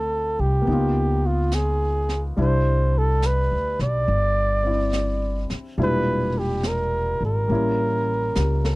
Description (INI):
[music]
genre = jazz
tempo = 70 BPM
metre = 4/4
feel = swing 67% on 8ths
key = unclear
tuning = A4 = 443 Hz
[part]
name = mellow flugelhorn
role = melody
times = 0.0-8.8 s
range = F4 to D5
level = -24 LUFS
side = right 1 dB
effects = none
[part]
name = warm concert grand piano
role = accompaniment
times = 0.0-8.8 s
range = Bb2 to A4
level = -28 LUFS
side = left 2 dB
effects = none
[part]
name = upright bass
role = bass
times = 0.0-8.8 s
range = E1 to D2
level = -23 LUFS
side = equal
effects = none
[part]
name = jazz brush drum kit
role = drums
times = 0.7-8.8 s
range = brushed snare drum, hi-hat, snare drum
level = -32 LUFS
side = right 1 dB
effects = none
[sound]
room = little or no reverb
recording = dry, close 1970s-style studio recording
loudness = -20 LUFS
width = side -21 dB against mid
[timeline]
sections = 0.0-8.8 A section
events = drum fill 8.4-8.8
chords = 0.0 Dm9; 0.7 Db13; 2.4 Cadd9; 5.8 Em7b5; 7.5 A7b9